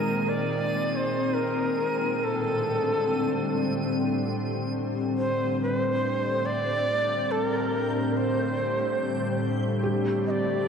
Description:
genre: ambient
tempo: free time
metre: none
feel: none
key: Bb major from 4.8 s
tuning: A4 = 441 Hz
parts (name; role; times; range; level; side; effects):
- breathy bright shakuhachi; melody; 0.0-10.7 s; A4 to Eb5; -28 LUFS; right 1 dB; tape echo
- soft additive organ-like pad; sustained chords; 0.0-10.7 s; A2 to C4; -27 LUFS; left 1 dB; ensemble chorus, built-in reverb
- backwards swelling texture; texture; 0.0-10.7 s; G6 to Eb7; -40 LUFS; right 3 dB; built-in reverb
- felt-muted upright piano; arpeggios; 9.8-10.7 s; G4; -28 LUFS; left 1 dB; tape echo
room: wet lush hall reverb, RT60 2.8 s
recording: worn, warbling old tape, cassette tape, warbly pitch drift, faint mains hum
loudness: -24 LUFS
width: side -6 dB against mid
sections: 0.0-4.8 A section; 4.8-10.7 B section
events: fade-in on synth texture 4.8-10.7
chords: 0.0 Ab; 2.2 Cm69/A

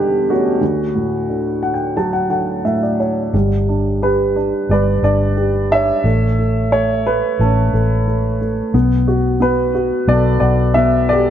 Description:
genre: acoustic folk-pop ballad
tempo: 89 BPM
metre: 4/4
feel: straight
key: unclear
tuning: A4 = 444 Hz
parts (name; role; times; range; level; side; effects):
- warm upright piano; melody; 0.0-11.3 s; D2 to A5; -15 LUFS; equal; none
- vintage muted fingered electric bass; bass; 3.3-11.3 s; G1 to B1; -17 LUFS; equal; none
room: light reverb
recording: none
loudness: -14 LUFS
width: side -10 dB against mid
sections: 0.0-3.3 A section; 3.3-11.3 B section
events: upright piano fill 1.3-3.3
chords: 0.0 Em7; 0.6 Dmaj7; 3.3 G; 6.0 A; 8.7 B5

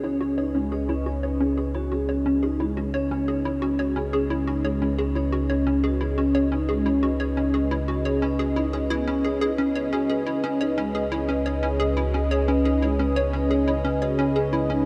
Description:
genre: ambient, sequencer-driven space music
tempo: 88 BPM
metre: 4/4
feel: straight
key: C# minor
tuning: A4 = 440 Hz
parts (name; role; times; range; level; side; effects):
- sweeping resonant pad; sustained chords; 0.0-14.9 s; C#4 to D#5; -28 LUFS; equal; chorus
- vibraphone with soft mallets; arpeggios; 0.0-14.8 s; G#3 to C#5; -30 LUFS; equal; delay
- hollow square pluck; riff; 0.0-14.8 s; C#4 to C#5; -30 LUFS; equal; lush chorus, delay
- analog drone; bass; 0.1-14.9 s; C#2; -31 LUFS; equal; chorus
room: wet huge ambient reverb, RT60 7.7 s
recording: dark, warm production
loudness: -24 LUFS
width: mono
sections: 0.0-14.9 A section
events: none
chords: 0.0 C#m7

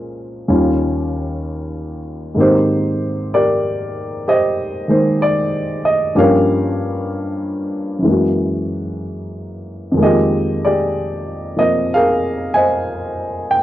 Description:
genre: jazz ballad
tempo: 63 BPM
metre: 4/4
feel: swing 66% on 8ths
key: unclear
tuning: A4 = 440 Hz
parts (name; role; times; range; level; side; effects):
- dark baby grand piano; solo; 0.0-13.6 s; Eb2 to Ab5; -15 LUFS; equal; none
room: small room reverb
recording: dry, close 1970s-style studio recording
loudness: -15 LUFS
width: side -14 dB against mid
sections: 0.0-13.6 A section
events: none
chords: 0.5 Eb9; 2.4 Abmaj9; 6.1 Gm7b5; 8.1 F#9; 10.0 Fm11

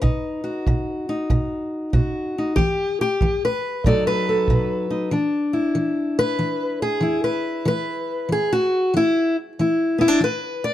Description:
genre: acoustic country blues, solo or duo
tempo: 94 BPM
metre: 4/4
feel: swing 65% on 8ths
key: unclear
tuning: A4 = 440 Hz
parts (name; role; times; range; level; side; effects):
- fingerpicked steel-string acoustic guitar; melody; 0.0-10.7 s; B2 to D5; -19 LUFS; left 1 dB; plate reverb
- kick drum; drums; 0.0-4.7 s; none; -23 LUFS; right 2 dB; none
room: moderate studio reverb, RT60 0.5 s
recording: dark, warm production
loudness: -19 LUFS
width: side -12 dB against mid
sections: 0.0-5.1 A section; 5.1-10.7 B section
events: steel-string acoustic guitar solo 5.1-10.7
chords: 0.0 B; 2.6 N.C.; 3.8 B7; 5.1 E7(no3)

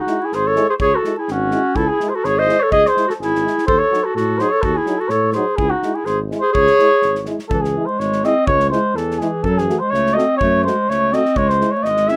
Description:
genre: balkan folk, Balkan brass band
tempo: 125 BPM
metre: 2/4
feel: straight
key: C# harmonic minor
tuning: A4 = 440 Hz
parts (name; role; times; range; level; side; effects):
- mellow flugelhorn; melody; 0.0-12.2 s; F#4 to E5; -20 LUFS; equal; none
- warm clarinet; second line; 0.0-12.2 s; E3 to B#4; -22 LUFS; equal; none
- dark French horn; accompaniment; 0.1-12.2 s; D#4 to F#4; -29 LUFS; equal; none
- warm euphonium; accompaniment; 0.1-12.2 s; F#3 to A3; -30 LUFS; equal; none
- natural country drum kit; percussion; 0.1-12.1 s; kick drum, snare drum; -30 LUFS; equal; none
- mellow tuba; bass; 0.3-12.1 s; G#1 to A2; -26 LUFS; equal; none
room: moderate studio ambience, RT60 0.5 s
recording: rough home demo mix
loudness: -17 LUFS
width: mono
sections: 0.0-7.5 A section; 7.5-12.2 B section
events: none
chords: 0.0 C#m; 3.7 D#dim; 5.6 C#m; 9.4 F#m; 11.4 C#m

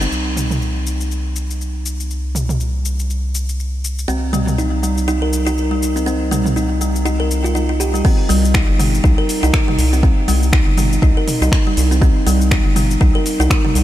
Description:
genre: afro house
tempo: 121 BPM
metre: 4/4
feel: swing 57% on 16ths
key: C minor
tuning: A4 = 438 Hz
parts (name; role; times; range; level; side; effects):
- kalimba; arpeggios; 0.0-0.1, 4.1-13.7 s; G3 to Bb4; -20 LUFS; right 1 dB; sidechain pumping, tape echo
- round analog bass; bass; 0.0-13.8 s; G1 to C2; -18 LUFS; equal; sidechain pumping
- deep house drum kit; drums; 0.0-13.8 s; crash cymbal, finger snaps, hi-hat, shaker, toms; -23 LUFS; equal; overdrive, studio reverb
- electronic kick drum; drums; 8.0-13.6 s; none; -15 LUFS; equal; overdrive, studio reverb
room: light reverb, digital ambience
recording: none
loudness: -14 LUFS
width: side -13 dB against mid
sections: 0.1-8.0 A section; 8.0-13.8 B section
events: drop 8.0-13.8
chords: 0.1 N.C.; 4.1 Fsus2/C (rootless); 8.0 Cm

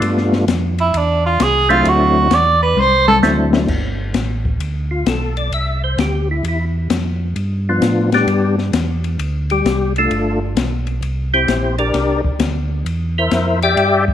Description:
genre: soul jazz organ trio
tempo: 131 BPM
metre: 4/4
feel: swing 66% on 8ths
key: G mixolydian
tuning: A4 = 440 Hz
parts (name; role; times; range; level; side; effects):
- percussive tonewheel organ; melody; 0.0-14.1 s; F3 to G5; -17 LUFS; left 2 dB; chorus vibrato, slow rotary speaker, tape echo
- mellow tonewheel organ; bass; 0.0-14.1 s; G1 to A2; -19 LUFS; right 1 dB; chorus vibrato, slow rotary speaker
- open jazz drum kit; drums; 0.0-14.1 s; crash cymbal, hi-hat, kick drum, ride cymbal, snare drum, toms; -21 LUFS; left 4 dB; none
- warm tenor saxophone; melody; 0.8-3.2 s; D4 to D5; -14 LUFS; right 3 dB; none
room: moderate plate reverb, RT60 1.5 s, small room ambience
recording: 1960s-style stereo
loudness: -14 LUFS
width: side -10 dB against mid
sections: 0.0-3.7 A section; 3.7-14.1 A section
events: tenor saxophone solo 0.0-3.7; drum fill 2.8-3.7; tonewheel organ solo 3.7-14.1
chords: 0.0 G9; 0.9 D9; 3.7 Gadd9; 5.5 Cadd9; 7.4 G9; 9.2 Dm7; 10.1 G9; 11.0 C9

